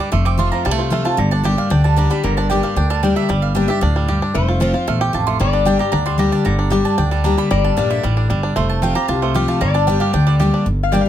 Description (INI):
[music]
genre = bluegrass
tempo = 228 BPM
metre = 4/4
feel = straight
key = G minor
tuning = A4 = 441 Hz
[part]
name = bluegrass banjo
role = melody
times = 0.0-10.7 s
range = D3 to G4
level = -22 LUFS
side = right 3 dB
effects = none
[part]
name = picked steel-string acoustic guitar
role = accompaniment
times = 0.0-11.1 s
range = E2 to G4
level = -19 LUFS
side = left 2 dB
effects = none
[part]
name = mandolin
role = stabs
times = 0.0-11.0 s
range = Bb3 to D6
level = -24 LUFS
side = right 9 dB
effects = none
[part]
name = upright bass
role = bass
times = 0.1-11.0 s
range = F1 to D2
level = -19 LUFS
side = equal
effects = none
[part]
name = lap resonator guitar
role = second line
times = 2.2-11.1 s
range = Bb4 to F5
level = -24 LUFS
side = left 10 dB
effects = none
[sound]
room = little or no reverb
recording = close, detailed microphones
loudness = -14 LUFS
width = side -11 dB against mid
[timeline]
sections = 0.0-10.7 A section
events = mandolin solo 0.0-10.7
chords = 0.1 F; 1.2 Gm; 4.3 F; 5.4 Gm; 8.6 F; 9.6 Gm